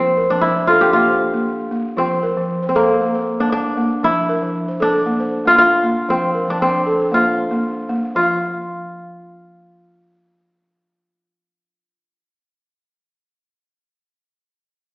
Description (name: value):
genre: west african traditional, West African string and xylophone music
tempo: 116 BPM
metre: 4/4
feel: swing 53% on 16ths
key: unclear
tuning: A4 = 439 Hz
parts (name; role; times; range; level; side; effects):
- kora; melody; 0.0-12.4 s; Bb3 to G4; -16 LUFS; equal; none
- balafon; arpeggios; 0.0-12.5 s; F3 to F5; -20 LUFS; equal; none
room: wet recital hall reverb, RT60 1.6 s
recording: heard from further back in the room, small speaker sound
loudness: -15 LUFS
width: side -27 dB against mid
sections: 0.0-8.2 A section; 8.2-12.3 B section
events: none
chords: 0.0 F; 0.9 Bb5; 2.0 F; 3.0 Bbmaj9; 4.0 F; 5.1 Bbmaj9; 6.1 F; 7.1 Bb5; 8.2 N.C.